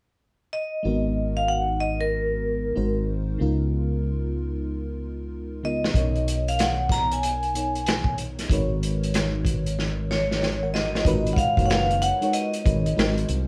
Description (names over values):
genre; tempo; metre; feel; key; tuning
R&B, neo-soul; 94 BPM; 4/4; swing 64% on 16ths; G# dorian; A4 = 440 Hz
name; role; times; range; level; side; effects
vibraphone with medium hard mallets; melody; 0.5-13.2 s; A#4 to A#5; -28 LUFS; equal; none
FM electric piano with soft pad layer; accompaniment; 0.8-13.5 s; B2 to F#5; -32 LUFS; equal; chorus
fretless electric bass; bass; 0.9-13.5 s; F#1 to C#2; -29 LUFS; equal; none
crunchy breakbeat drum kit; drums; 5.8-13.5 s; finger snaps, hi-hat, kick drum, snare drum; -28 LUFS; equal; none
room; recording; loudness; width
moderate studio reverb, RT60 0.6 s; band playing live in one room; -24 LUFS; mono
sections
0.8-11.0 A section; 11.0-13.5 B section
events
drum fill 4.7-5.9, 9.8-11.0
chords
0.0 N.C.; 0.8 G#m9; 2.8 G#9; 3.4 C#13; 5.9 Bmaj9; 8.5 G#m11; 11.0 G#m9; 13.0 G#9